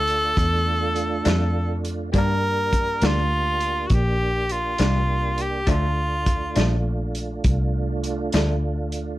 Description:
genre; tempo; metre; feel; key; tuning
slow blues; 68 BPM (dotted quarters); 12/8; straight; D minor; A4 = 440 Hz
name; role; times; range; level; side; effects
edgy tenor saxophone; melody; 0.0-6.9 s; F4 to Bb4; -24 LUFS; equal; none
tonewheel organ; sustained chords; 0.0-9.2 s; A3 to G4; -31 LUFS; right 3 dB; chorus vibrato, slow rotary speaker
vintage muted fingered electric bass; bass; 0.0-9.2 s; Bb1 to G2; -24 LUFS; equal; none
vintage drum kit; drums; 0.1-9.1 s; hi-hat, kick drum, snare drum; -24 LUFS; equal; none
electric guitar through a small old amp; accompaniment; 1.3-8.5 s; G2 to D4; -27 LUFS; left 3 dB; tremolo
room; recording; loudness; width
little or no reverb; dark, warm production; -20 LUFS; side -16 dB against mid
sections
0.0-9.2 A section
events
none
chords
0.0 Dm; 2.1 Gm; 5.7 Dm

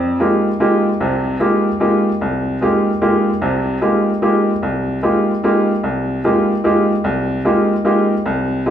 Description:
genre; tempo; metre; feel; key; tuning
jazz; 149 BPM; 3/4; swing 65% on 8ths; F minor; A4 = 439 Hz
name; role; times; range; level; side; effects
bright upright piano; solo; 0.0-8.7 s; C2 to G4; -14 LUFS; equal; none
room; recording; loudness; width
wet large studio reverb, RT60 1.3 s; band playing live in one room; -14 LUFS; side -9 dB against mid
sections
0.0-8.7 A section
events
none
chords
0.0 Fm11

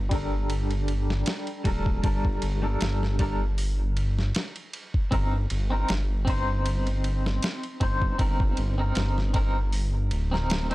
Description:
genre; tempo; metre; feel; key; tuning
trip hop; 78 BPM; 4/4; swing 54% on 16ths; G minor; A4 = 438 Hz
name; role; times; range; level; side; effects
dark detuned saw bass; bass; 0.0-10.7 s; D1 to G1; -26 LUFS; equal; none
clean electric guitar; accompaniment; 0.1-10.7 s; G3 to C5; -31 LUFS; equal; tremolo, low-pass filter, tape echo
dusty soul sampler-style drum kit; drums; 0.1-10.7 s; hi-hat, kick drum, ride cymbal, snare drum; -29 LUFS; equal; small room ambience
room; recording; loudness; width
little or no reverb; dry, gritty hardware recording; -24 LUFS; side -18 dB against mid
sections
0.0-10.7 A section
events
filter sweep on clean electric guitar 0.0-10.7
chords
0.0 Gmadd9; 5.1 Cm7/G

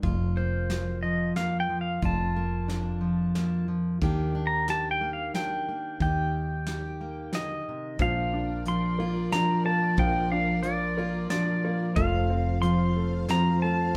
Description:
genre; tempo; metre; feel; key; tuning
acoustic folk duo or small band; 90 BPM; 3/4; straight; unclear; A4 = 440 Hz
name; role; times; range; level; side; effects
fingerpicked plugged-in steel-string acoustic guitar; accompaniment; 0.0-14.0 s; F2 to G4; -31 LUFS; equal; none
woody fretless electric bass; bass; 0.0-13.2 s; F1 to Eb2; -32 LUFS; equal; none
soft brush drum kit; drums; 0.0-14.0 s; hi-hat, kick drum, snare drum; -36 LUFS; equal; none
pedal steel guitar; melody; 0.4-14.0 s; C5 to C6; -32 LUFS; equal; none
dark studio string section; sustained chords; 8.0-14.0 s; F4 to F5; -41 LUFS; equal; none
bright upright piano; arpeggios; 8.0-14.0 s; F3 to F4; -36 LUFS; equal; none
room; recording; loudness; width
wet studio reverb, RT60 0.8 s; band playing live in one room; -27 LUFS; mono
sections
0.0-8.0 A section; 8.0-14.0 B section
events
none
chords
0.0 Bb/F; 4.0 Ebmaj7; 8.0 Bb; 12.0 F

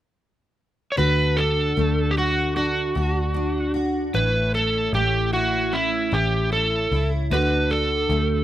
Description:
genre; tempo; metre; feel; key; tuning
acoustic pop; 76 BPM; 4/4; swing 55% on 16ths; D major; A4 = 443 Hz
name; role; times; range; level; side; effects
overdriven slide guitar; melody; 0.9-8.4 s; E4 to C#5; -22 LUFS; right 1 dB; slapback echo
picked steel-string acoustic guitar; accompaniment; 1.0-8.4 s; A2 to F#4; -26 LUFS; equal; double-tracked left and right, slapback echo
vintage muted fingered electric bass; bass; 1.0-8.4 s; A1 to D2; -24 LUFS; left 1 dB; none
room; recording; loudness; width
little or no reverb; recorded outdoors, with no room sound; -19 LUFS; side -13 dB against mid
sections
1.0-8.4 A section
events
none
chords
0.0 N.C.; 1.0 D; 4.1 A; 7.3 D

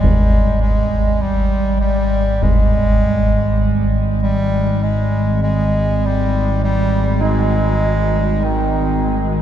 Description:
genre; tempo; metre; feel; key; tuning
dark ambient drone; 50 BPM; 4/4; straight; unclear; A4 = 440 Hz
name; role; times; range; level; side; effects
warm bass clarinet; melody; 0.0-9.4 s; Eb3 to Ab3; -18 LUFS; right 1 dB; shimmer reverb, diffuse ambient delay
analog drone; drone; 0.0-9.4 s; Ab1; -18 LUFS; equal; wide subtle chorus
concert bass drum; percussion; 0.0-2.7 s; none; -19 LUFS; equal; low-pass filter on kick
old church bells; arpeggios; 7.2-9.4 s; Eb4; -22 LUFS; right 3 dB; shimmer reverb, diffuse ambient delay
room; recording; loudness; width
wet huge ambient reverb, RT60 8.2 s; in a vast, echoing space; -14 LUFS; side -10 dB against mid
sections
0.0-9.4 A section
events
none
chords
0.0 Ab5

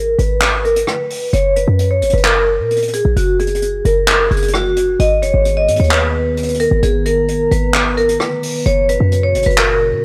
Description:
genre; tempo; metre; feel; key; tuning
hip hop, trap; 131 BPM; 4/4; half-time; G# minor; A4 = 436 Hz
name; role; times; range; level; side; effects
vibraphone with hard mallets; melody; 0.0-10.0 s; F#4 to D#5; -18 LUFS; equal; low-pass filter, tape echo
short 808-style bass; bass; 0.0-10.0 s; F#1 to A#2; -20 LUFS; equal; none
jazz brush drum kit; drums; 0.2-9.7 s; handclaps, hi-hat, rim click; -21 LUFS; equal; none
dark analog pad; sustained chords; 5.0-10.0 s; A#2 to A#5; -26 LUFS; equal; chorus
room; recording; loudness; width
studio ambience; dry, gritty hardware recording; -15 LUFS; mono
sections
0.0-10.0 A section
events
filter sweep on vibraphone 0.0-5.0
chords
0.0 G#m; 1.3 F#; 5.0 G#m; 8.7 F#

